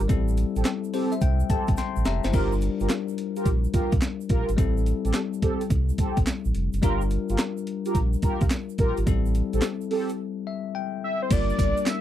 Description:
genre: R&B, new jack swing.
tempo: 107 BPM.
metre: 4/4.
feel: swing 67% on 16ths.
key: G dorian.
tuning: A4 = 438 Hz.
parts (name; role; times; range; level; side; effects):
bell-like tine electric piano; accompaniment; 0.0-12.0 s; G3 to C6; -29 LUFS; left 8 dB; wide subtle chorus.
sub bass with octave; bass; 0.0-11.7 s; F1 to C2; -25 LUFS; right 1 dB; none.
breakbeat sampler-style drum kit; drums; 0.0-12.0 s; crash cymbal, handclaps, hi-hat, kick drum, snare drum, tambourine; -25 LUFS; right 1 dB; none.
egg shaker; percussion; 0.1-12.0 s; none; -47 LUFS; right 18 dB; none.
mellow synth brass; stabs; 0.6-10.1 s; C4 to Bb4; -29 LUFS; right 2 dB; chorus, phaser, slapback echo.
wide unison lead; melody; 11.0-12.0 s; C5 to E5; -26 LUFS; equal; none.
room: little or no reverb.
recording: dry, close 1970s-style studio recording.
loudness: -22 LUFS.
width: side -12 dB against mid.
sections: 0.0-11.3 A section.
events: tine electric piano fill 0.7-2.3, 10.2-11.3; drum fill 1.8-2.3; break 10.2-11.3.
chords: 0.1 Am7; 2.3 Gm7; 4.6 Am7; 6.8 Gm7; 9.1 Am7; 11.3 Gm7.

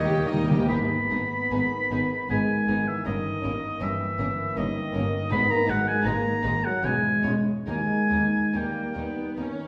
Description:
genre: classical, slow romantic movement for symphony orchestra.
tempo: 78 BPM.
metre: 3/4.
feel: uneven beats, rubato.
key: G# minor.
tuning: A4 = 443 Hz.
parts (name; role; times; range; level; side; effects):
clear oboe; second line; 0.0-9.4 s; C#5 to B5; -30 LUFS; equal; none.
warm symphonic violin section; second line; 0.0-9.5 s; C#4 to G5; -41 LUFS; equal; none.
rich symphonic viola section; accompaniment; 0.0-9.7 s; G3 to G4; -36 LUFS; equal; none.
mellow French horn section; sustained chords; 0.0-9.4 s; D#3 to G4; -31 LUFS; equal; none.
concert harp; arpeggios; 0.0-9.7 s; G2 to C#5; -37 LUFS; equal; none.
clear symphonic double bass section; bass; 0.0-9.5 s; E1 to D#2; -36 LUFS; equal; none.
timpani; percussion; 0.0-0.7, 5.3-8.9 s; G#2 to D#3; -31 LUFS; equal; none.
rich symphonic violin section; melody; 0.7-9.4 s; G#4 to C#5; -49 LUFS; equal; none.
clear symphonic cello section; bass; 0.7-9.5 s; D#2 to G#2; -39 LUFS; equal; none.
room: wet recital hall reverb, RT60 1.4 s.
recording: recorded in a church or concert hall.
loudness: -25 LUFS.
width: mono.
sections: 0.7-9.7 A section.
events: timpani fill 0.0-0.7.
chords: 0.0 D#; 0.7 G#m; 3.1 D#7/G; 5.3 G#m; 6.8 C#m/E; 7.7 D#.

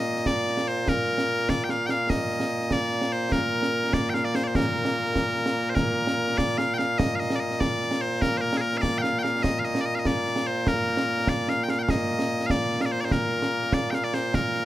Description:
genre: scottish traditional, Scottish pipe music.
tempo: 98 BPM (dotted quarters).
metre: 6/8.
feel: straight.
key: Bb major.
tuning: A4 = 439 Hz.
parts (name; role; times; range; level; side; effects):
loud bright bagpipes; melody; 0.0-14.7 s; Bb2 to G5; -24 LUFS; equal; none.
concert snare drum and concert bass drum; drums; 0.2-14.6 s; none; -28 LUFS; right 1 dB; none.
room: light reverb.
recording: none.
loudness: -23 LUFS.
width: side -14 dB against mid.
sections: 0.0-5.8 A section; 5.8-14.7 A section.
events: none.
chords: none.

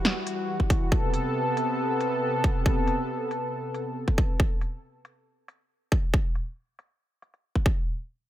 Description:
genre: heavy wobble dubstep.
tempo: 138 BPM.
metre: 4/4.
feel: half-time.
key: unclear.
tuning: A4 = 440 Hz.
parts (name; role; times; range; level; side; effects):
lush unison pad; sustained chords; 0.0-4.4 s; C3 to A4; -27 LUFS; equal; chorus, sidechain pumping.
big-room dance drum kit; drums; 0.0-7.4 s; hi-hat, snare drum; -29 LUFS; equal; overdrive, low-pass filter on hats, small room ambience, low-pass filter on snare.
electronic kick drum; drums; 0.6-7.7 s; none; -24 LUFS; equal; overdrive, small room ambience.
room: light reverb.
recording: none.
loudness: -24 LUFS.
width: side -13 dB against mid.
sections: 0.0-7.9 A section.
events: filter sweep on drum 0.0-7.9.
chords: 0.0 Emadd9; 0.9 Amadd9; 7.7 N.C..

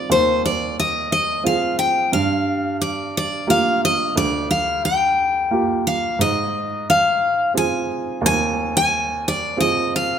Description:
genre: acoustic folk-pop ballad.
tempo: 88 BPM.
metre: 3/4.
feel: straight.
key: unclear.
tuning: A4 = 439 Hz.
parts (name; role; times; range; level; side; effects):
picked steel-string acoustic guitar; melody; 0.0-10.2 s; C5 to Ab5; -18 LUFS; left 2 dB; none.
warm upright piano; accompaniment; 0.0-10.2 s; D2 to Ab4; -23 LUFS; right 4 dB; none.
room: moderate concert hall reverb, RT60 2.0 s.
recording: minimal, uncompressed stereo recording.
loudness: -17 LUFS.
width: side -8 dB against mid.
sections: 0.0-10.2 A section.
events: none.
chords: 0.0 Ab6; 2.1 Gm7; 6.2 Ab6.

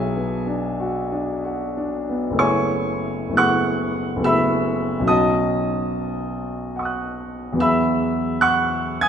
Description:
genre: classical, impressionist solo piano.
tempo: 58-76 BPM.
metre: 3/4.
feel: rubato.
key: F# dorian.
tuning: A4 = 440 Hz.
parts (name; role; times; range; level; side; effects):
warm grand piano; solo; 0.0-9.1 s; F#1 to G#6; -19 LUFS; equal; none.
room: moderate concert hall reverb, RT60 2.4 s.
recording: minimal, uncompressed stereo recording.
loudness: -19 LUFS.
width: side -8 dB against mid.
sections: 0.0-2.4 A section; 2.4-9.1 B section.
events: none.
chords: 0.0 Bm6; 2.4 F#m11; 5.1 Badd9; 7.6 Eadd9.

